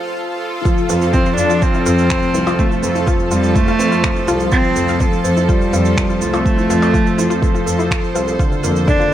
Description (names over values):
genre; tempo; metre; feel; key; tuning
piano and strings electronica; 124 BPM; 4/4; straight; unclear; A4 = 439 Hz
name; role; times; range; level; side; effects
granular cloud pad; sustained chords; 0.0-9.1 s; D4 to C5; -23 LUFS; right 1 dB; built-in reverb, sidechain pumping
felt-muted upright piano; riff; 0.0-9.1 s; D3 to C5; -20 LUFS; left 1 dB; digital delay
wide unison pluck; arpeggios; 0.7-9.0 s; E4 to F4; -27 LUFS; left 4 dB; none
electronic kick drum; drums; 0.7-9.0 s; none; -18 LUFS; equal; none
electronic shaker, finger snaps and percussion blips; drums; 0.7-9.1 s; none; -26 LUFS; right 2 dB; none
rich symphonic cello section; bass; 0.9-8.8 s; C2 to F2; -20 LUFS; equal; tube saturation, sidechain pumping
warm cello; melody; 1.1-9.1 s; F3 to D4; -18 LUFS; right 1 dB; none
room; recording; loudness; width
light reverb; high-pass filter; -13 LUFS; side -11 dB against mid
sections
0.7-9.1 A section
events
break 0.0-0.7; drop 0.7-9.1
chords
0.0 F; 8.4 Bbadd9